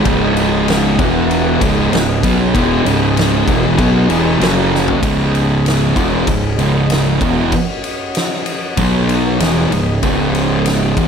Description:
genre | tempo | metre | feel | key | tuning
stoner and doom metal | 96 BPM | 4/4 | straight | C# minor | A4 = 438 Hz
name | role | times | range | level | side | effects
mellow tonewheel organ | sustained chords | 0.0-11.1 s | F#3 to F#5 | -25 LUFS | left 2 dB | slow rotary speaker
fuzz guitar | riff | 0.0-11.1 s | C#2 to B3 | -18 LUFS | left 11 dB | distortion
thick fuzz guitar | riff | 0.0-11.1 s | C#2 to B3 | -16 LUFS | right 9 dB | distortion
fuzz fingered electric bass | bass | 0.1-11.1 s | C#1 to B1 | -21 LUFS | equal | overdrive
oversized low-tuned drum kit | drums | 0.1-11.1 s | kick drum, ride cymbal, snare drum, toms | -19 LUFS | left 1 dB | none
room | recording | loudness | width
light reverb | none | -12 LUFS | side -6 dB against mid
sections
0.0-5.0 A section; 5.0-11.1 B section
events
drum fill 4.7-5.0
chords
0.1 C#5; 1.0 E5; 1.6 C#m; 4.4 F#5; 5.0 C#m; 8.8 B5; 9.4 C#m

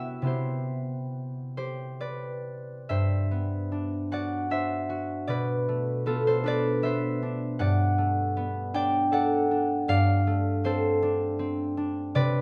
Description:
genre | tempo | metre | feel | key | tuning
classical, solo harp piece | 44-54 BPM (dotted quarters) | 6/8 | rubato | G major | A4 = 440 Hz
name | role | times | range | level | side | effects
concert harp | solo | 0.0-12.4 s | G2 to G5 | -28 LUFS | equal | none
room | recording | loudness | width
light reverb | close, detailed microphones | -27 LUFS | mono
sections
0.0-2.9 A section; 2.9-12.4 B section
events
none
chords
0.3 Cmaj7; 2.9 Gmaj7; 5.3 Bm7; 7.6 Gmaj9; 9.9 F69/G

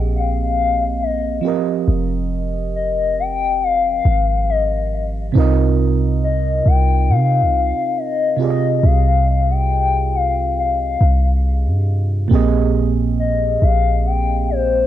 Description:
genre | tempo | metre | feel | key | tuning
contemporary R&B | 69 BPM | 4/4 | straight | unclear | A4 = 440 Hz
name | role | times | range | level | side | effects
mellow FM electric piano | accompaniment | 0.0-14.9 s | Bb2 to Eb5 | -21 LUFS | right 8 dB | chorus, cassette tape
clean 808-style bass | bass | 0.0-14.9 s | F1 to C3 | -17 LUFS | equal | none
gliding portamento lead | melody | 0.2-14.9 s | C5 to G5 | -19 LUFS | left 6 dB | chorus, cassette tape, analog delay
room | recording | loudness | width
light reverb, digital ambience | home recording on cassette, nothing above 10.4 kHz | -15 LUFS | side -12 dB against mid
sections
0.0-14.9 A section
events
none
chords
0.0 Bb13sus4; 1.4 F7sus4; 5.4 Cm7; 8.4 Fm9/C; 12.3 Bb13sus4

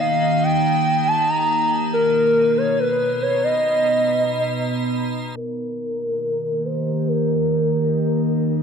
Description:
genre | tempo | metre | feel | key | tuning
IDM | free time | none | none | unclear | A4 = 440 Hz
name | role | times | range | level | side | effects
warbly nostalgic lead | melody | 0.0-8.6 s | A#4 to Bb5 | -19 LUFS | equal | chorus, tape echo
icy glass pad | sustained chords | 0.0-8.6 s | B2 to A#5 | -22 LUFS | right 1 dB | chorus, built-in reverb
room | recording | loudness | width
moderate plate reverb, RT60 2.6 s | echo-heavy mix, low-pass filter | -18 LUFS | side -6 dB against mid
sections
0.0-5.4 A section; 5.4-8.6 B section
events
filter sweep 5.4-8.6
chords
0.0 Eb; 1.9 Bmaj7; 5.4 Eb

